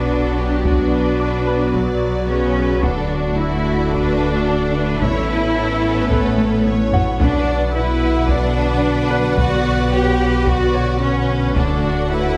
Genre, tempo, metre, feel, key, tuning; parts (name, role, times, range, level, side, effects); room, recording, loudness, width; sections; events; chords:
cinematic, hybrid orchestral and electronic film score; 110 BPM; 4/4; straight; B minor; A4 = 438 Hz
rich studio violin section; melody; 0.0-12.4 s; F#4 to D5; -31 LUFS; equal
rich symphonic violin section; second line; 0.0-12.4 s; F#4 to F#5; -32 LUFS; equal
warm symphonic viola section; accompaniment; 0.0-12.4 s; C#3 to G4; -27 LUFS; equal
dark French horn section; sustained chords; 0.0-12.4 s; A3 to F#4; -26 LUFS; equal
lush unison pad; sustained chords; 0.0-12.4 s; D3 to F#5; -28 LUFS; equal; chorus
rich symphonic cello section; bass; 0.0-12.4 s; F#3 to G4; -25 LUFS; equal
warm sub bass; bass; 0.0-12.4 s; D1 to B1; -27 LUFS; equal
warm symphonic double bass section; bass; 0.0-12.4 s; A1 to D2; -26 LUFS; equal
sub drop; sound effects; 0.0-0.7 s; barely audible
bright grand piano; texture; 0.0-12.4 s; F#4 to D6; -33 LUFS; equal
taiko ensemble; drums; 0.7-12.1 s; -24 LUFS; equal
moderate scoring stage reverb, RT60 1.9 s; -18 LUFS; mono
0.0-12.4 A section
impact 0.0-0.7; drum fill 6.4-7.2
0.0 Bm; 2.8 D; 5.0 Aadd9; 7.2 Bm; 11.6 D